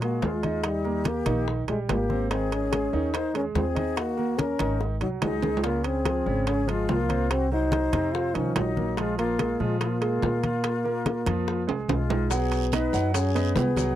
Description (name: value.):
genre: Afro-Cuban jazz.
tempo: 144 BPM.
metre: 4/4.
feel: straight.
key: Bb minor.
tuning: A4 = 445 Hz.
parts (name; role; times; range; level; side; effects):
mellow trombone; melody; 0.0-14.0 s; F3 to F4; -28 LUFS; equal; none.
breathy mellow silver concert flute; second line; 0.0-14.0 s; Db4 to C5; -33 LUFS; left 11 dB; none.
clear grand piano; accompaniment; 0.0-14.0 s; C3 to F#5; -31 LUFS; right 5 dB; none.
upright bass; bass; 0.0-14.0 s; Ab1 to Bb2; -30 LUFS; equal; none.
bongos; percussion; 0.0-13.8 s; none; -35 LUFS; left 8 dB; none.
congas; percussion; 0.0-14.0 s; none; -32 LUFS; left 2 dB; none.
timbales; percussion; 0.0-14.0 s; none; -31 LUFS; right 7 dB; none.
guiro; percussion; 12.3-14.0 s; none; -41 LUFS; right 20 dB; none.
maracas; percussion; 12.3-14.0 s; none; -39 LUFS; left 23 dB; none.
room: little or no reverb.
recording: dry, close 1970s-style studio recording.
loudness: -23 LUFS.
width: side -12 dB against mid.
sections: 0.0-12.3 A section; 12.3-14.0 B section.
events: drum fill 4.8-5.6, 11.7-12.3.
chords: 0.0 Bb5; 0.6 Eb; 2.3 Ab; 4.0 Ebm7; 4.8 Ab7; 5.6 Dbmaj7; 7.3 Cdim; 8.1 F5; 9.0 Bb5; 12.3 B69.